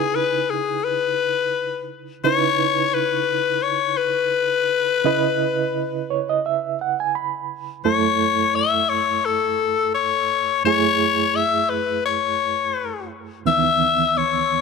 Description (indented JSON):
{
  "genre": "blues",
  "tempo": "86 BPM",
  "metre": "4/4",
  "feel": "swing 53% on 16ths",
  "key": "C# minor",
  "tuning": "A4 = 441 Hz",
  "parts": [
    { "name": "growling tenor saxophone", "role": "melody", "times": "0.0-14.6 s", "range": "G#4 to E5", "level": "-19 LUFS", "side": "left 8 dB", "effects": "none" },
    { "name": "bright reed electric piano", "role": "accompaniment", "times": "0.0-14.6 s", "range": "C#2 to B5", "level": "-24 LUFS", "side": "right 12 dB", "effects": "fast tremolo" }
  ],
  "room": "moderate spring reverb, RT60 2.1 s",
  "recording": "1960s-style stereo with parts hard left and right",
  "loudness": "-18 LUFS",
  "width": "side -4 dB against mid",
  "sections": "0.0-14.6 A section",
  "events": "reed electric piano fill 5.7-7.9",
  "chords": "0.0 C#m7; 7.9 F#m7; 13.5 C#m7"
}